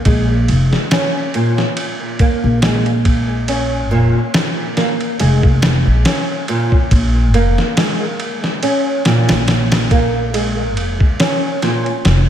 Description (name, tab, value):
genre	trip hop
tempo	70 BPM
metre	4/4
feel	swing 55% on 16ths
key	Bb minor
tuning	A4 = 441 Hz
part	nylon-string guitar	arpeggios	0.0-11.9 s	Bb2 to Db4	-18 LUFS	right 1 dB	ensemble chorus, tape echo
part	upright bass	bass	0.1-12.3 s	F1 to Bb1	-15 LUFS	equal	none
part	dusty soul sampler-style drum kit	drums	0.1-12.3 s	kick drum, ride cymbal, snare drum	-17 LUFS	equal	none
room	light reverb, small room ambience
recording	none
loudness	-13 LUFS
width	side -10 dB against mid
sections	0.0-12.3 A section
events	none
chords	0.0 Bbm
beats	| 0.06 0.91 1.77 2.63 | 3.48 4.34 5.20 6.06 | 6.91 7.77 8.63 9.48 | 10.34 11.20 12.06